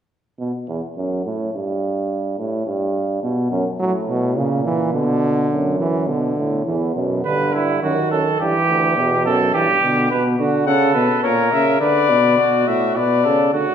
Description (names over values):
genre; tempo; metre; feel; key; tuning
classical, imitative canzona for brass ensemble; 105 BPM; 3/4; straight; E minor; A4 = 440 Hz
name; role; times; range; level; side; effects
warm euphonium; bass; 0.4-13.7 s; D2 to D3; -20 LUFS; right 1 dB; none
clear trombone; accompaniment; 3.8-10.1, 13.5-13.7 s; B2 to A3; -21 LUFS; right 1 dB; none
warm trumpet; second line; 7.2-13.7 s; E4 to B4; -19 LUFS; right 2 dB; none
warm cornet; melody; 10.7-13.7 s; B4 to F#5; -18 LUFS; left 9 dB; none
room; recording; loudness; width
wet recital hall reverb, RT60 1.6 s; minimal, uncompressed stereo recording; -16 LUFS; side -8 dB against mid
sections
0.0-6.7 A section; 6.7-13.5 B section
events
none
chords
0.0 E5; 1.0 F#m; 1.5 Gsus2; 2.7 N.C.; 3.2 B5; 4.4 A#dim; 4.9 Bm; 6.7 Em; 7.8 D#dim/F#; 8.4 Em; 9.5 Em/G; 10.1 Bm; 11.2 A#dim; 11.8 Bm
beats
0.39 0.97 | 1.54 2.10 2.67 | 3.23 3.80 4.37 | 4.94 5.52 6.09 | 6.67 7.25 7.83 | 8.40 8.97 9.54 | 10.11 10.67 11.24 | 11.81 12.38 12.96 | 13.54